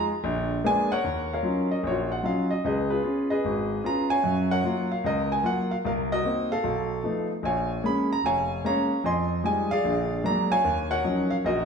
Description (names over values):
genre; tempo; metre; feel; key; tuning
solo jazz; 150 BPM; 4/4; swing 64% on 8ths; Eb minor; A4 = 440 Hz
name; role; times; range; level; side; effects
clear concert grand piano; solo; 0.0-11.7 s; F1 to C6; -23 LUFS; equal; none
room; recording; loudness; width
wet stone room reverb, RT60 1.3 s; band playing live in one room; -23 LUFS; side -6 dB against mid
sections
0.0-1.0 A section; 1.0-11.7 B section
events
grand piano solo 0.0-1.0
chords
0.2 Bb7b9; 1.0 Ebm9; 2.6 Db7; 4.2 Gbmaj7; 5.8 Cm7b5; 6.6 B7#11; 7.4 Bbm7; 9.0 Fm9; 9.8 Bb7b13; 10.6 Ebm9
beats
0.25 0.65 | 1.04 1.44 1.84 2.24 | 2.64 3.04 3.44 3.84 | 4.24 4.64 5.04 5.44 | 5.84 6.24 6.64 7.04 | 7.44 7.84 8.24 8.64 | 9.04 9.44 9.84 10.24 | 10.64 11.04 11.44